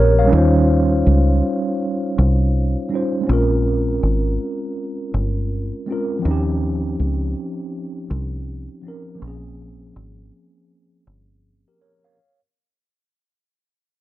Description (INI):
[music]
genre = lo-fi hip hop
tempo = 81 BPM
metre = 4/4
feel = swing 65% on 16ths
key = Bb dorian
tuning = A4 = 440 Hz
[part]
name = mellow tine electric piano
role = accompaniment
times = 0.0-12.4 s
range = F3 to F5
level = -21 LUFS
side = right 1 dB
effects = medium stereo tremolo
[part]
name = deep dub fingered electric bass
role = bass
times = 0.0-11.6 s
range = G1 to Eb2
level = -18 LUFS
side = equal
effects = none
[sound]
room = moderate booth ambience, RT60 0.2 s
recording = cassette tape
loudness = -17 LUFS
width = side -15 dB against mid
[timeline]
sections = 0.3-12.2 A section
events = fade-out 1.5-12.2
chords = 0.3 Eb13; 3.3 Bbm9; 6.2 Eb13; 9.2 Bbm9